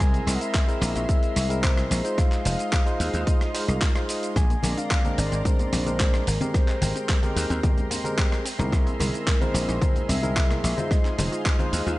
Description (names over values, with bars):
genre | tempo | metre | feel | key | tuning
nu-disco, nu disco | 110 BPM | 4/4 | straight | unclear | A4 = 440 Hz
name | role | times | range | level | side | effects
soft octave-layered synth lead | melody | 0.0-11.7 s | Bb4 to G#5 | -32 LUFS | left 2 dB | chorus, analog delay
tine electric piano | accompaniment | 0.0-12.0 s | G#3 to C5 | -30 LUFS | equal | sidechain pumping
lush unison pad | sustained chords | 0.0-12.0 s | Ab3 to C6 | -35 LUFS | equal | chorus, vintage 12-bit sampler grit, sidechain pumping
dry thumbed slap bass | bass | 0.0-12.0 s | F1 to Eb2 | -26 LUFS | equal | tube saturation
dusty soul sampler-style drum kit | drums | 0.0-12.0 s | handclaps, hi-hat, rim click, shaker | -30 LUFS | equal | overdrive, studio reverb
electronic kick drum | drums | 0.0-11.6 s | none | -22 LUFS | equal | overdrive, studio reverb
wide unison pluck | arpeggios | 4.4-12.0 s | G3 to F4 | -36 LUFS | left 1 dB | none
congas | percussion | 4.6-11.7 s | none | -34 LUFS | left 2 dB | none
room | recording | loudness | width
digital ambience | nothing above 10.9 kHz | -21 LUFS | side -18 dB against mid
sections
0.0-12.0 A section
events
none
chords
0.0 C7b13; 2.2 Fm7; 4.4 Bb9; 6.3 Abmaj9; 8.5 C7alt; 10.9 Fm7